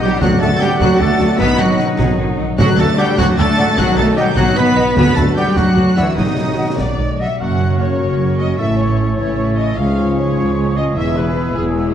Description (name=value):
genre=cinematic, heroic adventure film score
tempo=101 BPM (dotted quarters)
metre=6/8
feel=straight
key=unclear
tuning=A4 = 440 Hz
part: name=warm symphonic violin section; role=melody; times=0.0-11.6 s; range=G#4 to B6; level=-25 LUFS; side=left 2 dB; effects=none
part: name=rich symphonic violin section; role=second line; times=0.0-11.9 s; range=B3 to B5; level=-28 LUFS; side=left 3 dB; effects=none
part: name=silver concert flute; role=second line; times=0.0-11.9 s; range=F#5 to E6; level=-27 LUFS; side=left 2 dB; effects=none
part: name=warm clarinet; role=second line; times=0.0-11.9 s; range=E4 to D#5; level=-25 LUFS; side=left 2 dB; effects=none
part: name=warm oboe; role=second line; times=0.0-11.9 s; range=D#4 to B4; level=-28 LUFS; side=right 1 dB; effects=none
part: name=clear symphonic viola section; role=accompaniment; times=0.0-11.9 s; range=E3 to F#4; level=-24 LUFS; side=right 1 dB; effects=none
part: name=clear trombone section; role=sustained chords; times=0.0-11.9 s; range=G#2 to F#3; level=-25 LUFS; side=right 2 dB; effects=none
part: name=mellow French horn section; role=sustained chords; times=0.0-11.9 s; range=D#3 to E4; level=-22 LUFS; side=left 3 dB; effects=none
part: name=concert harp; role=arpeggios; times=0.0-11.9 s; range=E2 to F#5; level=-24 LUFS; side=left 7 dB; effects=none
part: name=clear trumpet section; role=stabs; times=0.0-11.8 s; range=D#4 to F#5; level=-23 LUFS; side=right 1 dB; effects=none
part: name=rich symphonic cello section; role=bass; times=0.0-11.9 s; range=C#2 to B3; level=-20 LUFS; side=right 2 dB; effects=none
part: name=rich symphonic double bass section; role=bass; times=0.0-11.9 s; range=E1 to D2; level=-20 LUFS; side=right 3 dB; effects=none
part: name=concert snare drum, concert bass drum and clash cymbals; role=drums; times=0.2-7.0 s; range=none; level=-23 LUFS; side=equal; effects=none
part: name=timpani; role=percussion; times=0.2-5.5, 9.8-10.3 s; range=C#3 to D3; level=-24 LUFS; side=right 1 dB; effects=none
room=wet scoring stage reverb, RT60 1.8 s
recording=worn, warbling old tape, cassette tape, warbly pitch drift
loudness=-12 LUFS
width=side -9 dB against mid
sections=0.0-7.4 A section; 7.4-11.9 B section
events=none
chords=0.2 D; 1.4 B; 2.6 D; 3.8 B; 5.0 D; 6.2 B; 7.4 F#; 8.6 A; 9.8 C#; 11.0 E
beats=| 0.22 0.81 | 1.40 2.00 | 2.59 3.18 | 3.78 4.37 | 4.97 5.57 | 6.18 6.79 | 7.40 8.00 | 8.59 9.19 | 9.78 10.37 | 10.97 11.56